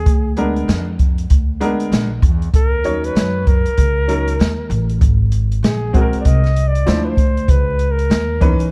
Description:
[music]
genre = hip hop, jazz-hop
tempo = 97 BPM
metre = 4/4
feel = swing 62% on 16ths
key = unclear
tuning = A4 = 442 Hz
[part]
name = breathy flugelhorn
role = melody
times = 0.0-8.5 s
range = G#4 to D#5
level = -25 LUFS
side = equal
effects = none
[part]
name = upright bass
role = bass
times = 0.0-8.6 s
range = G#1 to F#2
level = -21 LUFS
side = equal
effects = none
[part]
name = open jazz drum kit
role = drums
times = 0.1-8.7 s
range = hi-hat, kick drum, snare drum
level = -18 LUFS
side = equal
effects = none
[part]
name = clear upright piano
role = accompaniment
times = 0.4-8.7 s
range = E3 to C#5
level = -23 LUFS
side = equal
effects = none
[sound]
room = small room reverb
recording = dark, warm production, vinyl crackle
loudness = -16 LUFS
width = mono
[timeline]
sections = 0.0-8.7 A section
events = flugelhorn solo 0.0-8.7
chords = 0.1 A#7b9/D; 2.5 D#m7; 5.0 G#9; 6.9 Dm9; 7.5 C#m9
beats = | 0.06 0.68 1.30 1.92 | 2.54 3.16 3.77 4.39 | 5.01 5.63 6.25 6.87 | 7.49 8.11

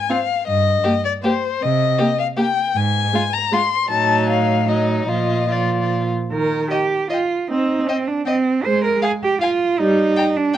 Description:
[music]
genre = quick classical-period movement for string quartet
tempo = 156 BPM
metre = 3/4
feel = rubato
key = Eb major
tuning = A4 = 440 Hz
[part]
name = warm violin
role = melody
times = 0.0-10.3 s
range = C5 to C6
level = -20 LUFS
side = left 7 dB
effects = none
[part]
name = rich violin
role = second line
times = 0.1-10.6 s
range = Eb4 to G5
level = -24 LUFS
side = left 2 dB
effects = none
[part]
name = rich viola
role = accompaniment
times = 0.1-10.1 s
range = Eb3 to C4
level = -22 LUFS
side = right 2 dB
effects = none
[part]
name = rich cello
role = bass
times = 0.5-10.6 s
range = G2 to C5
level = -20 LUFS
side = right 3 dB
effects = none
[sound]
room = light reverb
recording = worn, warbling old tape, cassette tape, warbly pitch drift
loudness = -16 LUFS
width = side -11 dB against mid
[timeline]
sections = 0.0-6.3 A section; 6.3-10.6 A section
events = none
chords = 0.5 Eb/G; 1.6 Cm7; 2.8 Fm/Ab (rootless); 3.9 F7b9/A; 5.1 Bb; 6.3 Eb; 7.5 Cm; 8.7 Fm/Ab; 9.8 Eb/G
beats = 0.10 | 0.47 0.85 1.23 | 1.61 1.99 2.37 | 2.75 3.13 3.52 | 3.90 4.29 4.68 | 5.10 5.51 5.92 | 6.32 6.72 7.11 | 7.50 7.89 8.27 | 8.66 9.04 9.42 | 9.80 10.18 10.56

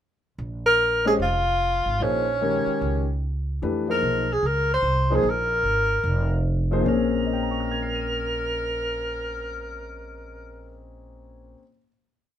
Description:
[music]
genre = modal jazz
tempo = 149 BPM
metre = 4/4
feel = swing 64% on 8ths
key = Bb dorian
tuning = A4 = 441 Hz
[part]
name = upright bass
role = bass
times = 0.4-11.5 s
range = F1 to F2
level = -28 LUFS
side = right 1 dB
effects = none
[part]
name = mellow tenor saxophone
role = melody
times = 0.7-10.9 s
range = Db4 to C5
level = -23 LUFS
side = equal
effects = none
[part]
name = warm concert grand piano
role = accompaniment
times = 1.0-11.9 s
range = Bb2 to Eb7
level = -26 LUFS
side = left 3 dB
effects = none
[sound]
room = light reverb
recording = minimal, uncompressed stereo recording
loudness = -21 LUFS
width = side -10 dB against mid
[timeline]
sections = 0.4-6.9 A section; 6.9-10.1 final chord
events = none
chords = 0.4 Bbm9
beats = | 0.39 0.80 1.20 1.60 | 2.01 2.41 2.82 3.22 | 3.63 4.03 4.43 4.84 | 5.24 5.65 6.05 6.45 | 6.86 7.26 7.66 8.06 | 8.47 8.87 9.27 9.68

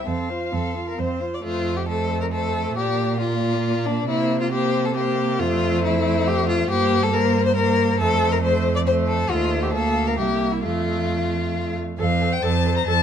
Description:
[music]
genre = quick classical-period movement for string quartet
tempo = 136 BPM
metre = 3/4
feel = straight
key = F major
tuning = A4 = 436 Hz
[part]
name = warm violin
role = melody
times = 0.0-13.0 s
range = C5 to Bb5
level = -28 LUFS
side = left 10 dB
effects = none
[part]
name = clear violin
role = second line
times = 0.0-13.0 s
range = D4 to D5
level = -23 LUFS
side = left 3 dB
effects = none
[part]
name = rich viola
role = accompaniment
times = 0.0-13.0 s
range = A3 to A4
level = -27 LUFS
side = right 3 dB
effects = none
[part]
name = rich cello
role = bass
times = 0.1-13.0 s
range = C2 to C3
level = -24 LUFS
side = right 4 dB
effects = none
[sound]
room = moderate large studio reverb, RT60 1.4 s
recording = dark, warm production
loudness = -19 LUFS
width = side -8 dB against mid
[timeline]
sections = 0.0-1.4 A section; 1.4-12.0 B section; 12.0-13.0 B section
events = none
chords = 0.1 F; 2.8 Bb; 4.1 C5; 5.4 F; 6.7 C5/G; 8.0 F; 9.3 F7/Eb; 9.7 Bb/D; 10.2 C7; 10.6 F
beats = | 0.06 0.52 0.98 | 1.43 1.88 2.32 | 2.76 3.20 3.64 | 4.08 4.52 4.96 | 5.39 5.83 6.26 | 6.69 7.13 7.56 | 8.00 8.43 8.87 | 9.30 9.74 10.19 | 10.64 11.09 11.54 | 11.99 12.43 12.87

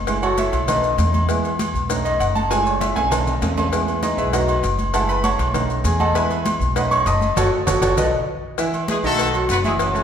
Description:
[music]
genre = latin, salsa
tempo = 198 BPM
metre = 4/4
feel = straight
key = unclear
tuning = A4 = 440 Hz
[part]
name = upright bass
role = bass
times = 0.0-10.0 s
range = F#1 to E2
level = -23 LUFS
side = equal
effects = none
[part]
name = bright concert grand piano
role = accompaniment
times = 0.1-10.0 s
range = D#3 to D#6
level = -21 LUFS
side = right 1 dB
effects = none
[part]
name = agogo bells and timbales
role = percussion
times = 0.1-9.9 s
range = none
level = -25 LUFS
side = equal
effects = none
[part]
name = congas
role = percussion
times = 0.1-10.0 s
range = none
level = -29 LUFS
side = equal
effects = none
[part]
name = cowbell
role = percussion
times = 0.1-9.9 s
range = none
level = -29 LUFS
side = left 6 dB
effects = none
[part]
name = maracas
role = percussion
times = 0.1-10.0 s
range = none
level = -34 LUFS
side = left 6 dB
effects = none
[part]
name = clear horn section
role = melody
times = 8.9-10.0 s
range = F#3 to B4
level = -21 LUFS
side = left 2 dB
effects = none
[sound]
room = wet recital hall reverb, RT60 1.5 s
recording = recorded in a church or concert hall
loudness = -17 LUFS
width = side -8 dB against mid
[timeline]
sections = 0.0-8.6 A section; 8.6-10.0 B section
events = grand piano solo 0.0-8.6; drum fill 2.5-3.7, 7.7-8.6; band accent 7.4-8.6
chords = 0.1 F#m7; 0.7 B7; 1.3 E; 1.9 B7; 2.5 F#m7; 3.1 B7; 3.7 E; 4.3 B7; 4.9 F#m7; 5.5 B7; 6.2 E; 6.8 B7; 7.4 F#m; 8.0 B7; 8.6 E; 9.2 B7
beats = | 0.08 0.38 0.68 0.99 | 1.29 1.59 1.90 2.20 | 2.51 2.81 3.12 3.42 | 3.72 4.03 4.33 4.63 | 4.94 5.24 5.54 5.85 | 6.15 6.46 6.76 7.06 | 7.37 7.67 7.97 8.28 | 8.58 8.88 9.19 9.49 | 9.79

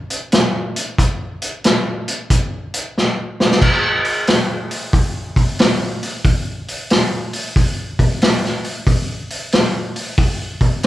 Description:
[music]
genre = rock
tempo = 91 BPM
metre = 4/4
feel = swing 66% on 8ths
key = none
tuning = none
[part]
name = vintage drum kit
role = drums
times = 0.1-10.9 s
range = crash cymbal, hi-hat, kick drum, snare drum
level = -15 LUFS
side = equal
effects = none
[sound]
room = light reverb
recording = band playing live in one room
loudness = -15 LUFS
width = side -14 dB against mid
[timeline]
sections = 0.0-3.6 A section; 3.6-10.9 B section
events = drum fill 3.0-3.6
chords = none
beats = 0.34 | 0.99 1.65 2.31 2.96 | 3.62 4.28 4.93 5.59 | 6.25 6.90 7.56 8.21 | 8.87 9.53 10.18 10.84

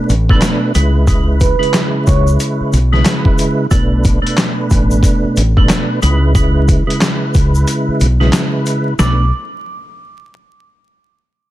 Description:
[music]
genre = hip hop, boom-bap hip-hop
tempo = 91 BPM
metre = 4/4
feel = swing 61% on 16ths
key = B dorian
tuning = A4 = 440 Hz
[part]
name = percussive tonewheel organ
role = accompaniment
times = 0.0-9.3 s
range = B2 to B4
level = -16 LUFS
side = right 1 dB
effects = chorus vibrato, slow rotary speaker, cassette tape, high-pass filter, low-pass filter
[part]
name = deep dub fingered electric bass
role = bass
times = 0.1-9.3 s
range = A1 to C#2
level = -13 LUFS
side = equal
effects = none
[part]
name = dusty soul sampler-style drum kit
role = drums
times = 0.1-9.2 s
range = handclaps, hi-hat, kick drum, snare drum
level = -14 LUFS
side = equal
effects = overdrive
[part]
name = egg shaker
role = percussion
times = 0.1-9.3 s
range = none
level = -32 LUFS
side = left 7 dB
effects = none
[part]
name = vibraphone with soft mallets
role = melody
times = 1.4-2.2, 9.0-9.3 s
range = B4 to D6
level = -22 LUFS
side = right 4 dB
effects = high-pass filter, low-pass filter, digital delay
[sound]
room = little or no reverb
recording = dense, heavily limited modern master, vinyl crackle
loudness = -11 LUFS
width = side -15 dB against mid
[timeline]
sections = 0.0-9.0 A section; 9.0-11.5 B section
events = kick muted 7.7-9.0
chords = 0.0 Bm7; 0.7 C#m7; 3.7 Bm7; 6.0 C#m7; 9.0 Bm7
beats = 0.42 | 1.08 1.74 2.40 3.06 | 3.71 4.37 5.03 5.69 | 6.35 7.01 7.67 8.33 | 8.99

